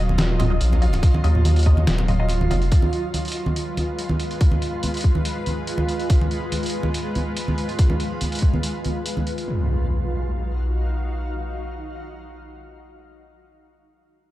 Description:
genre	deep dubstep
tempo	142 BPM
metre	4/4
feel	half-time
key	Eb minor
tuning	A4 = 441 Hz
part	granular cloud pad	sustained chords	0.0-12.5 s	Gb3 to F5	-29 LUFS	left 1 dB	built-in reverb
part	filtered dub chord stab	stabs	0.0-2.6 s	Gb3 to Eb5	-32 LUFS	left 3 dB	phaser, analog chorus, dub echo
part	saturated sub bass	bass	0.0-2.7 s	Eb1 to Eb2	-18 LUFS	equal	tube saturation
part	backwards swelling texture	texture	0.0-9.5 s	F4	-33 LUFS	right 4 dB	built-in reverb
part	congas	percussion	0.1-9.2 s	none	-25 LUFS	right 1 dB	none
part	trip hop sampler-style drum kit	drums	0.2-9.5 s	hi-hat, snare drum	-29 LUFS	equal	studio ambience
part	electronic kick drum	drums	1.0-8.5 s	none	-17 LUFS	equal	studio ambience
part	impact	sound effects	9.5-12.6 s	none	-25 LUFS	equal	none
room	digital ambience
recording	dry, gritty hardware recording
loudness	-19 LUFS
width	side -15 dB against mid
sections	0.0-9.5 A section; 9.5-12.9 B section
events	none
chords	0.0 Ebmadd9; 2.7 Fdim; 9.5 Ebmadd9

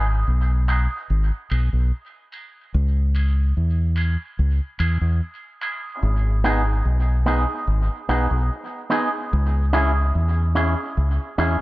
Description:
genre	dub reggae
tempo	73 BPM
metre	4/4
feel	straight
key	G# minor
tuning	A4 = 440 Hz
part	electric guitar with an envelope filter	accompaniment	0.0-11.6 s	B3 to G#4	-25 LUFS	right 1 dB	high-pass filter, tape echo
part	deep dub fingered electric bass	bass	0.0-11.6 s	G#1 to E2	-19 LUFS	equal	none
room	little or no reverb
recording	none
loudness	-19 LUFS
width	side -19 dB against mid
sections	0.0-11.6 A section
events	filter sweep on clean electric guitar 0.0-6.0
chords	0.0 G#m; 2.7 C#m; 6.0 G#m; 9.3 C#m

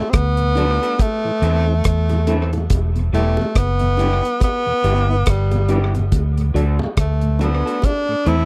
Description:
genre	roots reggae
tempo	70 BPM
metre	4/4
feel	swing 59% on 16ths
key	E minor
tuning	A4 = 436 Hz
part	clear tenor saxophone	melody	0.0-8.5 s	G3 to E4	-24 LUFS	equal	tape echo
part	mellow tonewheel organ	accompaniment	0.0-8.4 s	D2 to E4	-27 LUFS	equal	chorus vibrato, slow rotary speaker
part	vintage muted fingered electric bass	bass	0.1-8.5 s	E1 to E2	-20 LUFS	equal	none
part	deep reggae drum kit	drums	0.1-8.5 s	hi-hat, kick drum, rim click	-22 LUFS	equal	tape echo
part	electric guitar through a small old amp	accompaniment	0.6-8.5 s	G3 to A4	-31 LUFS	equal	tape echo
part	bongos	percussion	0.6-8.1 s	none	-32 LUFS	equal	none
room	little or no reverb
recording	dry, close 1970s-style studio recording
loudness	-18 LUFS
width	mono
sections	0.0-8.5 A section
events	none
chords	0.0 D; 1.0 Am; 2.7 Em; 6.1 D; 7.8 Am

